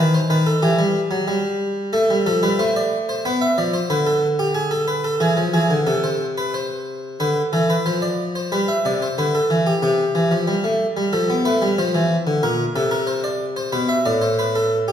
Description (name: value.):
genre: classical, baroque-style two-part invention for harpsichord.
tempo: 92 BPM.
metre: 4/4.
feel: straight.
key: unclear.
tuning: A4 = 445 Hz.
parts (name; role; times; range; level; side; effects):
harpsichord; solo; 0.0-14.9 s; A2 to E5; -17 LUFS; equal; none.
room: wet recital hall reverb, RT60 1.5 s.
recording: recorded in a church or concert hall.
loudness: -17 LUFS.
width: side -9 dB against mid.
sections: 0.0-7.2 A section; 7.2-14.9 B section.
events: none.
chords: 0.0 B/D#; 0.6 Em; 1.9 Am; 3.2 Bdim; 4.5 E; 5.9 N.C.; 7.2 Dm7; 8.5 G; 9.8 C; 11.1 F; 12.4 Bbmaj9; 13.7 G (rootless).